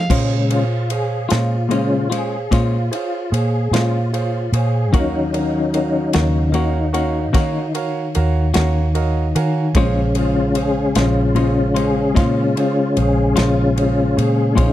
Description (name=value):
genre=slow blues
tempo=50 BPM (dotted quarters)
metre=12/8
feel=straight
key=Bb minor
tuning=A4 = 440 Hz
part: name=tonewheel organ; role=sustained chords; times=0.0-14.7 s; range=Db3 to Ab4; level=-20 LUFS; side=left 3 dB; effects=slow rotary speaker, chorus vibrato
part: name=vintage muted fingered electric bass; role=bass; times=0.0-14.7 s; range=Bb1 to Eb3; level=-19 LUFS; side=equal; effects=none
part: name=clean electric guitar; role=accompaniment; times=0.1-14.7 s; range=Bb2 to Gb4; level=-22 LUFS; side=left 6 dB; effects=tremolo
part: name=clear concert grand piano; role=accompaniment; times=0.1-14.7 s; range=Gb4 to Ab5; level=-25 LUFS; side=right 9 dB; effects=none
part: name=natural country drum kit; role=drums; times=0.1-14.7 s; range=crash cymbal, kick drum, ride cymbal, snare drum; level=-22 LUFS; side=equal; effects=none
room=little or no reverb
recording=dry, close 1970s-style studio recording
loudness=-15 LUFS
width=side -13 dB against mid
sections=0.1-14.7 A section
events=tonewheel organ solo 0.1-14.7; grand piano fill 8.5-9.8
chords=0.1 Bbm7; 4.9 Ebm7; 9.8 Bbm7